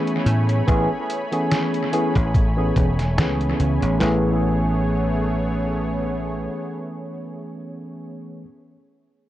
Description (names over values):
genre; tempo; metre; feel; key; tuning
vaporwave; 72 BPM; 4/4; swing 54% on 16ths; A major; A4 = 440 Hz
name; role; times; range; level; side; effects
barky tine electric piano; accompaniment; 0.0-8.5 s; E3 to G#4; -24 LUFS; equal; overdrive, wide subtle chorus, tape echo
lush unison pad; sustained chords; 0.0-8.1 s; A3 to B5; -29 LUFS; equal; chorus
detuned 8-bit digital drum machine; drums; 0.1-4.0 s; hi-hat, snare drum; -28 LUFS; equal; tape echo
dry thumbed slap bass; bass; 0.3-6.5 s; E1 to A2; -22 LUFS; equal; low-pass filter
detuned 8-bit digital drum machine; drums; 0.7-4.2 s; handclaps, kick drum, snare drum; -20 LUFS; equal; none
room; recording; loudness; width
moderate spring reverb, RT60 2.2 s; echo-heavy mix, cassette tape; -19 LUFS; side -14 dB against mid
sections
0.0-4.0 A section; 4.0-7.3 B section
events
none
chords
0.0 Amaj9